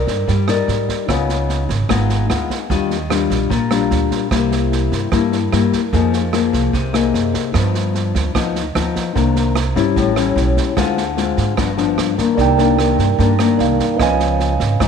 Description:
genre	bossa nova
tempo	149 BPM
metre	4/4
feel	straight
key	C minor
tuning	A4 = 440 Hz
part	nylon-string guitar	accompaniment	0.0-14.9 s	G2 to D5	-17 LUFS	left 8 dB	none
part	upright bass	bass	0.0-14.9 s	G1 to Ab2	-20 LUFS	right 2 dB	none
part	open jazz drum kit	drums	0.1-14.9 s	kick drum, rim click, snare drum	-23 LUFS	right 7 dB	none
part	mellow tine electric piano	accompaniment	12.4-14.9 s	Eb4 to Ab5	-18 LUFS	right 14 dB	fast stereo tremolo
room	light reverb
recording	1960s-style stereo with parts hard left and right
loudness	-14 LUFS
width	side -6 dB against mid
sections	0.0-12.4 A section; 12.4-14.9 A section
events	none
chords	0.0 Cm9; 1.1 Db9; 2.7 Ebmaj9; 4.3 C7; 5.9 Fm7; 7.5 G7b13; 9.2 Cm9; 10.0 A7; 10.8 Dm7b5; 11.6 G7; 12.4 Cm9; 14.0 Db9

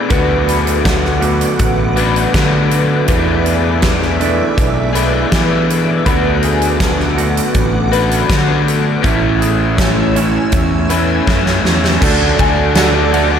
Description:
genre	rock, shoegaze and dream pop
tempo	80 BPM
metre	4/4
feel	straight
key	D lydian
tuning	A4 = 440 Hz
part	soft string machine	sustained chords	0.0-13.4 s	A4 to E6	-23 LUFS	equal	phaser, ensemble chorus
part	fingerpicked twelve-string acoustic guitar	arpeggios	0.0-13.4 s	G#4 to G#5	-24 LUFS	left 6 dB	wide subtle chorus, tape echo
part	electric guitar through a small old amp	riff	0.0-13.4 s	E2 to F#4	-19 LUFS	right 12 dB	reverse reverb
part	overdriven electric guitar	riff	0.0-13.4 s	A2 to A4	-18 LUFS	left 10 dB	wide subtle chorus
part	fuzz fingered electric bass	bass	0.1-13.4 s	A1 to E3	-17 LUFS	equal	overdrive
part	huge arena drum kit	drums	0.1-13.3 s	crash cymbal, hi-hat, kick drum, ride cymbal, snare drum	-17 LUFS	equal	none
part	tambourine	percussion	12.8-12.9 s	none	-27 LUFS	right 7 dB	none
room	small room ambience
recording	none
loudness	-11 LUFS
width	side -8 dB against mid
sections	0.0-12.0 A section; 12.0-13.4 B section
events	drum fill 11.3-12.0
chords	0.1 D6; 3.1 E7sus4; 6.1 D6; 9.0 Amaj7; 12.0 D

